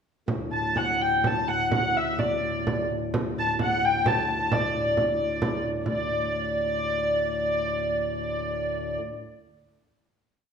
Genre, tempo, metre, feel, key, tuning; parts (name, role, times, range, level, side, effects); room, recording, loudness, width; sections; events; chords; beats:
medieval dance; 125-146 BPM; 3/4; straight; D major; A4 = 441 Hz
pipe organ, cornet; drone; 0.3-9.0 s; D2 to A2; -32 LUFS; left 1 dB
frame drum; percussion; 0.3-6.1 s; -30 LUFS; right 2 dB
dark hurdy-gurdy; melody; 0.5-9.0 s; D5 to A5; -25 LUFS; equal
wet recital hall reverb, RT60 1.3 s; minimal, uncompressed stereo recording; -24 LUFS; side -6 dB against mid
0.3-5.9 A section; 5.9-8.4 final chord
speeding up 0.3-8.4
| 0.28 0.76 1.24 | 1.71 2.19 2.66 | 3.13 3.59 4.05 | 4.51 4.96 5.41 | 5.85 6.29 6.72 | 7.15 7.58 8.00